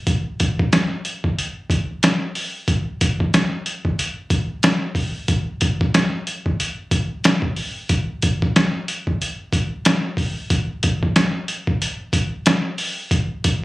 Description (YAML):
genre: hip hop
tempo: 92 BPM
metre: 4/4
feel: swing 57% on 16ths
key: none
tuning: none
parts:
  - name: boom bap sampler-style drum kit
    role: drums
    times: 0.1-13.6 s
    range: hi-hat, kick drum, snare drum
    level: -18 LUFS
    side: equal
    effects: none
room: moderate studio reverb, RT60 0.5 s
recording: recorded on a phone in the room, club reverb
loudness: -18 LUFS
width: side -19 dB against mid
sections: 0.0-7.9 A section; 7.9-13.6 B section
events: none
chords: none